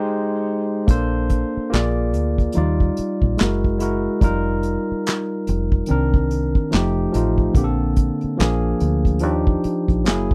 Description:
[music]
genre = R&B, neo-soul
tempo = 72 BPM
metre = 4/4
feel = swing 61% on 16ths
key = Bb major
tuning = A4 = 440 Hz
[part]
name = barky tine electric piano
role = accompaniment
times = 0.0-10.3 s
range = D3 to G5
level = -24 LUFS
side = equal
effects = overdrive
[part]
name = deep dub fingered electric bass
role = bass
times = 0.9-10.3 s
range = F1 to Eb2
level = -24 LUFS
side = equal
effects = none
[part]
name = unplugged drum kit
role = drums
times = 0.9-10.3 s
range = handclaps, hi-hat, kick drum, snare drum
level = -21 LUFS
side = equal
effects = none
[sound]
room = little or no reverb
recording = dry, close 1970s-style studio recording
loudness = -20 LUFS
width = mono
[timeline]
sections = 0.9-10.3 A section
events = band accent 0.0-0.9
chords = 0.0 Abmaj7; 0.9 Bbmaj9; 1.7 Bb7; 2.5 Ebmaj9; 3.4 Gb9; 4.2 F9sus4; 5.9 Cm9; 6.7 F9; 7.5 Bbmaj9; 8.4 Bb7; 9.2 Ebmaj9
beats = 0.05 | 0.88 1.71 2.55 3.38 | 4.21 5.05 5.88 6.71 | 7.55 8.38 9.21 10.05

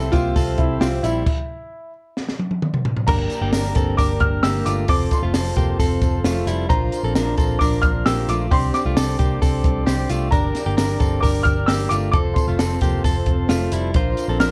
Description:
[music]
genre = jangly indie pop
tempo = 132 BPM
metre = 4/4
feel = straight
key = F major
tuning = A4 = 439 Hz
[part]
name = dark upright piano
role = melody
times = 0.0-14.5 s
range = E4 to F6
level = -27 LUFS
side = equal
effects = none
[part]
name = combo organ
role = accompaniment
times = 0.0-14.5 s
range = Bb3 to E5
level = -30 LUFS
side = equal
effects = none
[part]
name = direct-recorded clean electric guitar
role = arpeggios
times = 0.0-14.5 s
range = G3 to C5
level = -28 LUFS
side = equal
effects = none
[part]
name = vintage muted picked electric bass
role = bass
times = 0.0-14.5 s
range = F1 to C2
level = -25 LUFS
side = equal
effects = none
[part]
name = compact cocktail drum kit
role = drums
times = 0.1-14.5 s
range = crash cymbal, hi-hat, kick drum, snare drum, toms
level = -23 LUFS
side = equal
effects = none
[part]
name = tambourine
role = percussion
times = 0.2-14.5 s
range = none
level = -41 LUFS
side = equal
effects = none
[sound]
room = little or no reverb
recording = dark, warm production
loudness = -20 LUFS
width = mono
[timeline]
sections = 0.0-3.1 A section; 3.1-14.5 B section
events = stop 1.3-3.1; drum fill 2.2-3.1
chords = 0.0 C; 3.1 Gm; 4.9 F; 6.7 Bbadd9; 8.5 Csus2; 10.3 Gm; 12.1 F; 13.9 Bbadd9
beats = 0.36 0.81 | 1.27 1.72 2.17 2.62 | 3.08 3.53 3.98 4.44 | 4.89 5.34 5.79 6.25 | 6.70 7.15 7.61 8.06 | 8.51 8.96 9.42 9.87 | 10.32 10.78 11.23 11.68 | 12.14 12.59 13.04 13.49 | 13.95 14.40

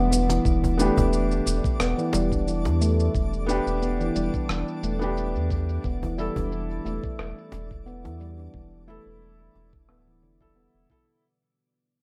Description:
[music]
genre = organic downtempo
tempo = 89 BPM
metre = 4/4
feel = swing 54% on 16ths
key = E minor pentatonic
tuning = A4 = 438 Hz
[part]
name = round analog bass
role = bass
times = 0.0-10.9 s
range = D1 to E2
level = -29 LUFS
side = equal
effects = none
[part]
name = twinkling granular texture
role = texture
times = 0.0-11.3 s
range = D4 to D5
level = -44 LUFS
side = equal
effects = built-in reverb
[part]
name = handpan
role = arpeggios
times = 0.1-11.0 s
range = B2 to D4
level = -30 LUFS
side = equal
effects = digital delay
[part]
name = dusty soul sampler-style drum kit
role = drums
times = 0.1-11.2 s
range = hi-hat, rim click, shaker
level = -36 LUFS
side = equal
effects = low-pass filter on hats, low-pass filter on perc, low-pass filter on snare, low-pass filter on room
[part]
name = cajon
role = percussion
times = 0.3-9.7 s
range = none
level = -32 LUFS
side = equal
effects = none
[part]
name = electronic kick drum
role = drums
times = 0.5-11.0 s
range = none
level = -30 LUFS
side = equal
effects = none
[part]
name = felt-muted upright piano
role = accompaniment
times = 0.8-11.2 s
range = B3 to A4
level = -32 LUFS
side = equal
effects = sidechain pumping, digital delay
[sound]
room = light reverb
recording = rough home demo mix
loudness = -25 LUFS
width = mono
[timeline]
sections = 0.5-11.2 A section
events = break 0.0-0.5; fade-out 0.5-11.2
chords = 0.5 Em7; 5.8 A5/E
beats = | 0.45 1.12 1.80 2.47 | 3.15 3.82 4.50 5.17 | 5.84 6.52 7.19 7.87 | 8.54 9.21 9.89 10.56

